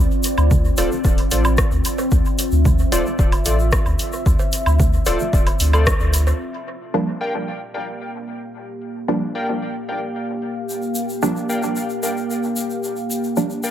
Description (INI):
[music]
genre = dub techno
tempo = 112 BPM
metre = 4/4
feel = straight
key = G minor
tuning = A4 = 441 Hz
[part]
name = deep dark ambient pad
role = sustained chords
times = 0.0-13.7 s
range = Bb3 to F5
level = -25 LUFS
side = equal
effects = chorus, built-in reverb, sidechain pumping
[part]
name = warm sub bass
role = bass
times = 0.0-6.3 s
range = D1 to D2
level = -18 LUFS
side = equal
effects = sidechain pumping
[part]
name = egg shaker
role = percussion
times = 0.1-6.4, 10.7-13.7 s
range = none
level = -30 LUFS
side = left 2 dB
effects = none
[part]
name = punchy analog drum machine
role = drums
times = 0.2-13.7 s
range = hi-hat, rim click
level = -25 LUFS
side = equal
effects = low-pass filter on hats, low-pass filter on snare, dub echo
[part]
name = woodblock and cowbell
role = percussion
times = 0.4-6.4 s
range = none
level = -28 LUFS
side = right 3 dB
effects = overdrive, sidechain pumping on perc, dub echo
[part]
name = filtered dub chord stab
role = stabs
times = 0.5-13.5 s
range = C3 to D4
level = -24 LUFS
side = right 2 dB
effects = chorus, phaser, sidechain pumping, dub echo
[part]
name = electronic kick drum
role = drums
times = 0.5-6.0 s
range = none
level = -18 LUFS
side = equal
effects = none
[part]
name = warbly lo-fi synth keys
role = riff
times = 0.8-13.7 s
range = F4 to G5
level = -27 LUFS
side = left 2 dB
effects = chorus, sidechain pumping, dub echo
[sound]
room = light reverb, digital ambience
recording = echo-heavy mix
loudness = -17 LUFS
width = side -11 dB against mid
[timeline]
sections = 0.0-6.4 A section; 6.4-13.7 B section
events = filter sweep on synth stab 0.0-6.4; band accent 5.9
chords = 0.0 Dm7; 6.4 Gm7